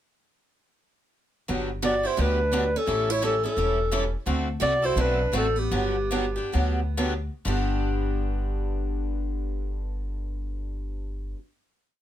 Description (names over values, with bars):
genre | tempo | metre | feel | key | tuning
acoustic string swing (jazz manouche) | 121-173 BPM | 4/4 | swing 60% on 8ths | G major | A4 = 440 Hz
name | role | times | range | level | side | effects
picked steel-string acoustic guitar | accompaniment | 1.5-11.4 s | G2 to A4 | -33 LUFS | right 4 dB | none
picked swing-style acoustic guitar | accompaniment | 1.5-11.4 s | G2 to A4 | -32 LUFS | left 4 dB | none
upright bass | bass | 1.5-11.3 s | E1 to D2 | -28 LUFS | equal | none
picked steel-string acoustic guitar | second line | 1.8-7.0 s | B3 to F#4 | -34 LUFS | right 4 dB | none
dark clarinet | melody | 1.9-7.0 s | G4 to D5 | -25 LUFS | equal | none
room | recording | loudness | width
light reverb | none | -24 LUFS | side -11 dB against mid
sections
1.5-7.5 A section; 7.5-11.4 final chord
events
slowing down 4.3-7.5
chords
1.5 Gmaj7; 2.9 A7; 4.3 D7; 5.7 Gmaj7; 7.5 G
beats
| 1.48 1.83 2.18 2.52 | 2.87 3.22 3.57 3.92 | 4.27 4.62 4.97 5.34 | 5.72 6.12 6.54 6.98 | 7.46 7.95 8.45 8.95 | 9.44 9.94 10.43 10.93